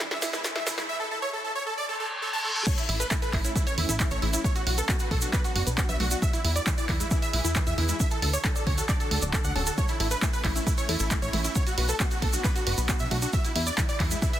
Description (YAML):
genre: uplifting trance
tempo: 135 BPM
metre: 4/4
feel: straight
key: A major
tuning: A4 = 439 Hz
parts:
  - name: supersaw chords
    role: melody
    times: 0.0-14.4 s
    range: E4 to A5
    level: -32 LUFS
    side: right 1 dB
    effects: sidechain pumping, dub echo
  - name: wide unison pluck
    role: second line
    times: 0.0-14.4 s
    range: E4 to F#5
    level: -38 LUFS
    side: right 1 dB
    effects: cassette tape, sidechain pumping, dub echo
  - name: lush unison pad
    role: sustained chords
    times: 0.2-14.4 s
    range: E2 to B4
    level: -40 LUFS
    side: equal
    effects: chorus, sidechain pumping
  - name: tight sequenced synth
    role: arpeggios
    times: 0.0-14.3 s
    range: D3 to D5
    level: -38 LUFS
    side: left 4 dB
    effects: chorus, sidechain pumping, dub echo
  - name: electronic kick drum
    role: drums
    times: 0.0-14.3 s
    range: none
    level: -27 LUFS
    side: equal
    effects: high-pass filter on kick, high-pass filter on room
  - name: punchy analog drum machine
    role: drums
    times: 0.0-14.4 s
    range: crash cymbal, handclaps, hi-hat, ride cymbal, snare drum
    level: -32 LUFS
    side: right 1 dB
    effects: sidechain pumping on hats, sidechain pumping on cymbals
  - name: tube shaker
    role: percussion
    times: 0.0-14.4 s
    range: none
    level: -35 LUFS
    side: right 3 dB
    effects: none
  - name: riser and reverse cymbal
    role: sound effects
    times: 0.0-2.7 s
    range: none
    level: -34 LUFS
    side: equal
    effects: none
  - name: plucky analog bass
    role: bass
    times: 2.9-14.2 s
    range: D1 to E2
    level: -29 LUFS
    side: equal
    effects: sidechain pumping
room: light reverb, digital ambience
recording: dense, heavily limited modern master, high-pass filter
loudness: -24 LUFS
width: side -12 dB against mid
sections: 0.0-2.7 A section; 2.7-14.4 B section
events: build-up 0.0-2.7; drum fill 0.0-0.9; riser 0.0-0.9; reverse cymbal 1.9-2.7; drop 2.7-14.4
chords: 0.0 E; 0.9 N.C.; 2.7 A; 4.4 Bm; 6.2 E; 8.0 D; 9.8 A; 11.6 Bm; 13.3 E